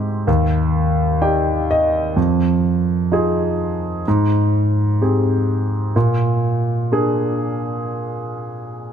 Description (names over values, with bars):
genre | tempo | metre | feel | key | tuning
folk | 63 BPM | 4/4 | straight | Eb major | A4 = 443 Hz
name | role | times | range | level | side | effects
warm concert grand piano | solo | 0.0-8.9 s | Eb2 to G5 | -16 LUFS | equal | none
room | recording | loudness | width
wet concert hall reverb, RT60 1.9 s | none | -16 LUFS | side -8 dB against mid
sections
0.0-8.9 A section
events
none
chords
0.3 Ebmaj7; 2.2 Fm7; 4.1 Abmaj7; 6.0 Bb7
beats
0.27 1.22 | 2.17 3.12 4.06 5.01 | 5.95 6.90 7.85 8.80